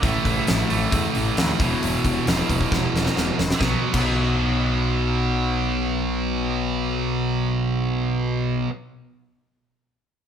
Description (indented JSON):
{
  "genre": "hard rock",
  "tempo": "134 BPM",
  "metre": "4/4",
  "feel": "straight",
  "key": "unclear",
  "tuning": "A4 = 440 Hz",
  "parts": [
    { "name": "high-gain distorted guitar", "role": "riff", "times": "0.0-8.7 s", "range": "E2 to B3", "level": "-24 LUFS", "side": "right 6 dB", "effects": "distortion" },
    { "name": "overdriven electric guitar", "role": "riff", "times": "0.0-8.7 s", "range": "E2 to B3", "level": "-27 LUFS", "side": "left 8 dB", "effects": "none" },
    { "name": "growling picked electric bass", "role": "bass", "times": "0.0-8.6 s", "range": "E1 to E2", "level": "-27 LUFS", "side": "equal", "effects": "overdrive" },
    { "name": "huge arena drum kit", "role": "drums", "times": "0.0-4.1 s", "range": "crash cymbal, hi-hat, kick drum, snare drum", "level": "-24 LUFS", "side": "equal", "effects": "none" }
  ],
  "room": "light reverb",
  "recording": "band playing live in one room",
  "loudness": "-20 LUFS",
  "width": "side -8 dB against mid",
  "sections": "0.0-3.6 A section; 3.6-7.2 B section",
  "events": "drum fill 2.7-3.6",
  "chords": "0.0 A5; 1.6 E5; 3.6 B5"
}